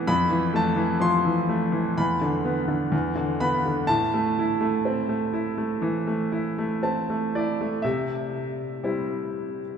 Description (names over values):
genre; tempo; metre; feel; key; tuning
classical, lyrical solo piano; 62 BPM; 4/4; rubato; A minor; A4 = 440 Hz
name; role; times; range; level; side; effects
bright concert grand piano; solo; 0.0-9.8 s; E2 to C6; -22 LUFS; equal; none
room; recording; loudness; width
wet cathedral reverb, RT60 4.6 s; recorded in a church or concert hall; -22 LUFS; side -7 dB against mid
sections
0.0-7.8 A section; 7.8-9.8 B section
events
grand piano fill 6.3-7.8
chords
0.1 Fmaj7#11; 2.0 E5; 3.9 Am; 7.8 C